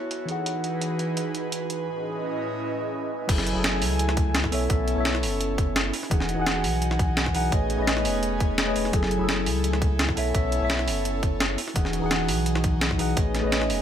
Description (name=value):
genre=liquid drum and bass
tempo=170 BPM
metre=4/4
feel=straight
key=unclear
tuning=A4 = 440 Hz
part: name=mellow tine electric piano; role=accompaniment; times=0.0-13.8 s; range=E3 to F#5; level=-27 LUFS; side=equal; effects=phaser, digital delay
part: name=airy breathy pad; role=sustained chords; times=0.0-13.8 s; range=A2 to G#5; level=-31 LUFS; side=right 1 dB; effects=chorus, sidechain pumping
part: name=breakbeat sampler-style drum kit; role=drums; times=0.1-13.8 s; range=crash cymbal, hi-hat, snare drum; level=-27 LUFS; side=right 1 dB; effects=small room ambience
part: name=warm sub bass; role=bass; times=3.3-13.8 s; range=E1 to C#2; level=-28 LUFS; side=equal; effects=none
part: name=electronic kick drum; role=drums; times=3.3-13.2 s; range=none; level=-25 LUFS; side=equal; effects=small room ambience
room=digital ambience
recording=low-pass filter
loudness=-22 LUFS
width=side -9 dB against mid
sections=0.0-3.3 A section; 3.3-13.8 B section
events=filter sweep 0.0-3.3; drop 3.3-13.8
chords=0.3 Emaj9; 1.9 Amaj9#11; 3.3 F#m9; 4.5 B9sus4; 5.9 Emaj9; 7.5 Amaj9#11; 8.9 F#m9; 10.2 B9sus4; 11.6 Emaj9; 13.2 Amaj9#11